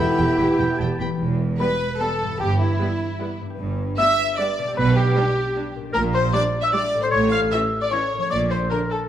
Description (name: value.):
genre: cinematic, playful, whimsical film cue.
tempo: 152 BPM.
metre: 3/4.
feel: straight.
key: E minor.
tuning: A4 = 440 Hz.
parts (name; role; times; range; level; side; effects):
warm chamber violin section; melody; 0.0-9.0 s; E4 to G5; -30 LUFS; left 1 dB; none.
clear oboe; second line; 0.0-1.1 s; G5 to B5; -31 LUFS; equal; none.
mellow concert flute; second line; 0.0-1.0 s; B5; -29 LUFS; left 2 dB; none.
rich chamber violin section; second line; 0.0-9.0 s; E4 to F5; -30 LUFS; left 1 dB; none.
warm clarinet; second line; 0.0-9.1 s; E4 to F5; -25 LUFS; equal; none.
clear bassoon; accompaniment; 0.0-1.0 s; B3; -30 LUFS; right 4 dB; none.
clear studio viola section; accompaniment; 0.0-8.8 s; D3 to G4; -30 LUFS; right 1 dB; none.
mellow French horn section; sustained chords; 0.0-0.8 s; E4; -22 LUFS; right 1 dB; none.
concert harp; arpeggios; 0.0-9.1 s; G2 to D5; -30 LUFS; left 5 dB; none.
rich chamber double bass section; bass; 0.0-8.6 s; E1 to B1; -26 LUFS; right 3 dB; none.
rich studio cello section; bass; 0.0-8.6 s; E2 to B2; -26 LUFS; right 3 dB; none.
celesta; melody; 1.6-9.1 s; E5 to F6; -26 LUFS; left 3 dB; none.
room: wet recital hall reverb, RT60 1.4 s.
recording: none.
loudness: -19 LUFS.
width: side -10 dB against mid.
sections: 0.0-1.2 A section; 1.2-9.1 B section.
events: none.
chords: 0.0 Em; 2.4 Em/G; 3.6 G; 4.8 G/B; 5.9 Gm/Bb; 7.1 A; 8.3 Bb.